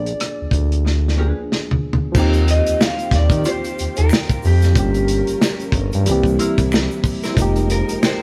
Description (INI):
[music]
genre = R&B, neo-soul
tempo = 92 BPM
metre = 4/4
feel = swing 56% on 16ths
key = Eb major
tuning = A4 = 439 Hz
[part]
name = electric guitar through a small old amp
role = melody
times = 0.0-8.2 s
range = G4 to F5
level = -26 LUFS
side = equal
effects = none
[part]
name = bright tine electric piano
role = accompaniment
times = 0.0-8.2 s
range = Eb3 to Ab4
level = -26 LUFS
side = equal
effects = none
[part]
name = smooth synth bass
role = bass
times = 0.0-8.0 s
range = F1 to Eb3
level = -20 LUFS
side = equal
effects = none
[part]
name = warm soul drum kit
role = drums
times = 0.1-8.2 s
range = crash cymbal, hi-hat, kick drum, rim click, snare drum, toms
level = -22 LUFS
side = equal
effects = none
[part]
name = hollow-body jazz guitar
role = second line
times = 0.8-7.4 s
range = C4 to C5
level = -28 LUFS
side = equal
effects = none
[part]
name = dark studio string section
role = sustained chords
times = 2.2-8.2 s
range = C3 to G5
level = -33 LUFS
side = equal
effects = none
[part]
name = egg shaker and finger snaps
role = percussion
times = 2.2-8.2 s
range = none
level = -37 LUFS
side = equal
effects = none
[sound]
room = light reverb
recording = band playing live in one room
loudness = -18 LUFS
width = mono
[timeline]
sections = 0.0-2.2 A section; 2.2-8.2 B section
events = drum fill 0.8-2.2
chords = 0.0 Bb7b9; 2.2 Eb69; 4.8 Gm7b5; 6.1 C7; 7.4 Fm11